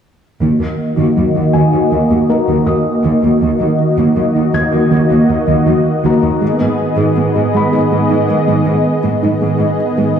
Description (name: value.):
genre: cinematic.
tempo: 80 BPM.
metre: 4/4.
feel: straight.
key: Eb minor.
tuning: A4 = 440 Hz.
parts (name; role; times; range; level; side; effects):
warm analog pad; sustained chords; 0.4-10.2 s; Eb3 to Eb5; -14 LUFS; equal; chorus, low-pass filter.
soft round pluck; arpeggios; 0.4-10.2 s; Eb3 to Ab4; -19 LUFS; right 2 dB; chorus, low-pass filter, tape echo.
rich symphonic cello section; bass; 0.4-10.2 s; Eb2 to Ab2; -16 LUFS; right 1 dB; none.
felt-muted upright piano; texture; 1.5-10.2 s; Gb4 to Ab6; -24 LUFS; left 4 dB; tape echo.
room: wet scoring stage reverb, RT60 1.8 s.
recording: studio reverb.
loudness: -11 LUFS.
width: side -8 dB against mid.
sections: 0.4-10.2 A section.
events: filter sweep 0.4-10.2.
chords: 0.4 Ebm; 6.4 Abm.